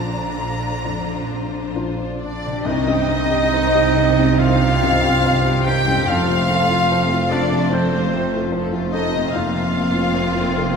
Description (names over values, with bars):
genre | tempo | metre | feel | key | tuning
cinematic, emotional film score for orchestra | 64-76 BPM | 4/4 | rubato | C dorian | A4 = 442 Hz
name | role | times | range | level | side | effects
warm studio violin section | melody | 0.0-10.8 s | Eb4 to Bb5 | -30 LUFS | left 3 dB | none
rich studio violin section | second line | 0.0-10.8 s | F4 to G5 | -24 LUFS | equal | none
felt-muted upright piano | accompaniment | 0.0-10.8 s | Bb1 to C5 | -26 LUFS | left 3 dB | none
warm studio viola section | accompaniment | 0.0-10.8 s | D3 to Eb4 | -28 LUFS | right 1 dB | none
concert harp | arpeggios | 0.0-10.8 s | F2 to D5 | -32 LUFS | left 4 dB | none
rich studio cello section | bass | 0.0-10.8 s | F2 to D4 | -25 LUFS | right 3 dB | none
warm studio double bass section | bass | 0.0-10.8 s | F1 to C2 | -24 LUFS | right 4 dB | none
clear clarinet | second line | 2.2-10.8 s | C4 to G4 | -25 LUFS | equal | none
hollow small flute group | second line | 2.2-10.8 s | C5 to G5 | -25 LUFS | left 2 dB | none
warm oboe | second line | 2.2-10.8 s | C5 to G5 | -28 LUFS | right 2 dB | none
mellow French horn section | sustained chords | 2.6-10.8 s | G3 to C4 | -28 LUFS | left 3 dB | none
room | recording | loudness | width
wet scoring stage reverb, RT60 2.0 s | heard from further back in the room | -16 LUFS | side -6 dB against mid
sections
0.0-2.7 A section; 2.7-10.8 B section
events
none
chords
0.0 Bbadd9; 2.7 Cm; 6.1 F; 9.3 Bbsus2/F